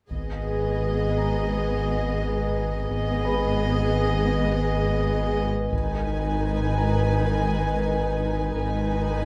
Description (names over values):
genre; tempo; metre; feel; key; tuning
cinematic, suspense film score; 85 BPM; 4/4; straight; G# minor; A4 = 439 Hz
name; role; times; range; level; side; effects
warm chamber violin section; melody; 0.1-5.5 s; D#5; -35 LUFS; equal; none
warm studio viola section; accompaniment; 0.1-9.2 s; D#3 to G#4; -32 LUFS; equal; none
glass harmonica; sustained chords; 0.1-9.2 s; B4 to G#5; -33 LUFS; equal; none
dark studio double bass section; bass; 0.1-9.2 s; G#1; -34 LUFS; equal; none
rich studio cello section; bass; 0.1-9.2 s; G#2; -32 LUFS; equal; none
saturated sub bass; drone; 0.1-9.2 s; G#1; -31 LUFS; equal; none
solo taiko drums; drums; 0.1-1.5, 5.7-7.1 s; none; -35 LUFS; equal; none
dark baby grand piano; texture; 1.2-9.2 s; B4 to B5; -40 LUFS; equal; none
rich studio violin section; second line; 5.7-9.2 s; B4 to G#5; -34 LUFS; equal; none
room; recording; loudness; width
moderate scoring stage reverb, RT60 1.8 s; none; -25 LUFS; mono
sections
0.1-5.7 A section; 5.7-9.2 B section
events
none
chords
0.1 G#m